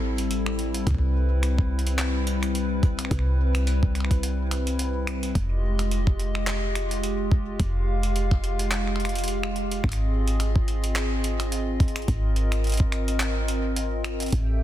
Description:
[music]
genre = IDM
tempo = 107 BPM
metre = 4/4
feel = swing 56% on 16ths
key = unclear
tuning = A4 = 442 Hz
[part]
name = hollow soft pad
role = sustained chords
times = 0.0-14.6 s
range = G3 to F5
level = -29 LUFS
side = left 1 dB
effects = chorus
[part]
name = woody FM bass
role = bass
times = 0.0-14.6 s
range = F1 to C2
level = -25 LUFS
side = equal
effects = tube saturation
[part]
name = jungle sampler-style drum kit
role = drums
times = 0.2-14.5 s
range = finger snaps, handclaps, hi-hat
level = -32 LUFS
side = equal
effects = overdrive, soft clipping on snare
[part]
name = electronic kick drum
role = drums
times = 0.9-14.5 s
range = none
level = -22 LUFS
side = equal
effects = overdrive
[part]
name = backwards swelling texture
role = texture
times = 14.4-14.6 s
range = G5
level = -46 LUFS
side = right 2 dB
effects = built-in reverb, sidechain pumping
[sound]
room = little or no reverb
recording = dense, heavily limited modern master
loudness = -22 LUFS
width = side -12 dB against mid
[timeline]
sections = 0.0-14.6 A section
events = none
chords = 0.0 Am7; 0.9 Cmaj7; 5.4 Fm9; 9.8 G#6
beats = 0.31 | 0.87 1.43 1.99 2.55 | 3.11 3.67 4.23 4.79 | 5.35 5.92 6.47 7.04 | 7.60 8.16 8.72 9.28 | 9.84 10.40 10.96 11.52 | 12.08 12.64 13.20 13.77 | 14.33

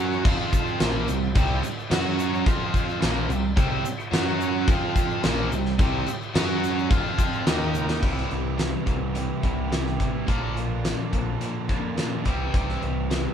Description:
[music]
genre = classic rock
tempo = 107 BPM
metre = 4/4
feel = straight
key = C mixolydian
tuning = A4 = 440 Hz
[part]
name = bright tonewheel organ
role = sustained chords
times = 0.0-8.0 s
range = Bb3 to C#5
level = -38 LUFS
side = left 1 dB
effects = none
[part]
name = distorted electric guitar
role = riff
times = 0.0-13.3 s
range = Bb2 to F#4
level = -29 LUFS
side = right 6 dB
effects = distortion
[part]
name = tight distorted guitar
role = riff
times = 0.0-13.3 s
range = Bb2 to F#4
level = -29 LUFS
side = left 3 dB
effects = distortion
[part]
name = growling picked electric bass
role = bass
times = 0.0-13.3 s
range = A1 to F#2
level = -30 LUFS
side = equal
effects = overdrive
[part]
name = egg shaker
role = percussion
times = 0.1-8.0 s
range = none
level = -45 LUFS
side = right 3 dB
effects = none
[part]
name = huge arena drum kit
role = drums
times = 0.2-13.2 s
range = crash cymbal, hi-hat, kick drum, snare drum, toms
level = -25 LUFS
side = equal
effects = vintage 12-bit sampler grit
[sound]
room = moderate small room reverb, RT60 0.5 s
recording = band playing live in one room, cassette tape, faint mains hum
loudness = -22 LUFS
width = side -8 dB against mid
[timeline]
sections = 0.0-8.0 A section; 8.0-13.3 B section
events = drum fill 7.7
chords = 0.2 F5; 0.8 C; 1.9 F#5; 2.5 F5; 3.0 C; 4.1 F#5; 4.7 F5; 5.2 C; 6.3 F#5; 6.9 F5; 7.5 Eb5; 8.0 C; 10.3 Bb; 12.3 C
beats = 0.24 0.80 | 1.35 1.90 2.46 3.01 | 3.56 4.12 4.67 5.23 | 5.79 6.35 6.91 7.47 | 8.03 8.59 9.15 9.72 | 10.28 10.85 11.41 11.98 | 12.54 13.11

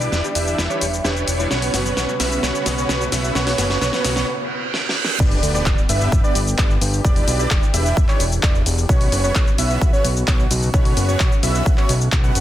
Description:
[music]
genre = EDM, festival progressive house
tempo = 130 BPM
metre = 4/4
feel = straight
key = B minor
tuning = A4 = 445 Hz
[part]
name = vibraphone with medium mallets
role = melody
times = 0.0-4.7 s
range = B4 to E5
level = -28 LUFS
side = right 3 dB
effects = dub echo
[part]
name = lush unison pad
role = sustained chords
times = 0.1-12.4 s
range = C#3 to G4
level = -31 LUFS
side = equal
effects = chorus, sidechain pumping
[part]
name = wide unison lead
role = arpeggios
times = 0.0-12.4 s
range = C#5 to F#5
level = -27 LUFS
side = right 1 dB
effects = sidechain pumping, dub echo
[part]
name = dense compressed supersaw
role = riff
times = 0.0-12.4 s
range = B3 to F#5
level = -26 LUFS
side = right 1 dB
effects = sidechain pumping, low-pass filter, dub echo
[part]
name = fat analog bass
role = bass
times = 0.0-12.4 s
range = E1 to D2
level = -22 LUFS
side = equal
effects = sidechain pumping
[part]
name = big-room dance drum kit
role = drums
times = 0.0-12.4 s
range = cabasa, crash cymbal, handclaps, hi-hat, snare drum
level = -23 LUFS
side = left 1 dB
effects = high-pass filter on snare, high-pass filter on perc, high-pass filter on hats, high-pass filter on cymbals
[part]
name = riser, reverse cymbal and impact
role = sound effects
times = 1.0-7.0 s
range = none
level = -29 LUFS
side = right 2 dB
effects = none
[part]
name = bright concert grand piano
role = accompaniment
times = 0.2-4.1 s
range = B2 to B4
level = -30 LUFS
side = left 2 dB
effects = none
[part]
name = electronic kick drum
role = drums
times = 5.2-12.2 s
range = none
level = -17 LUFS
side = equal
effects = none
[sound]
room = light reverb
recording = dense, heavily limited modern master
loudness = -16 LUFS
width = side -13 dB against mid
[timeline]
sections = 0.0-5.2 A section; 5.2-12.4 B section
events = build-up 0.0-5.2; drum fill 0.0-4.3, 4.7-5.2; filter sweep on analog synth lead 0.0-5.2; break 4.3-5.2; reverse cymbal 4.3-5.2; drop 5.2-12.4; impact 5.2-7.0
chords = 0.0 Em7; 1.5 Bsus2; 5.2 G; 7.0 Em7; 8.9 Bsus2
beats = 0.12 0.58 1.05 | 1.51 1.97 2.43 2.89 | 3.35 3.81 4.28 4.74 | 5.20 5.66 6.12 6.58 | 7.05 7.51 7.97 8.43 | 8.89 9.35 9.81 10.28 | 10.74 11.20 11.66 12.12

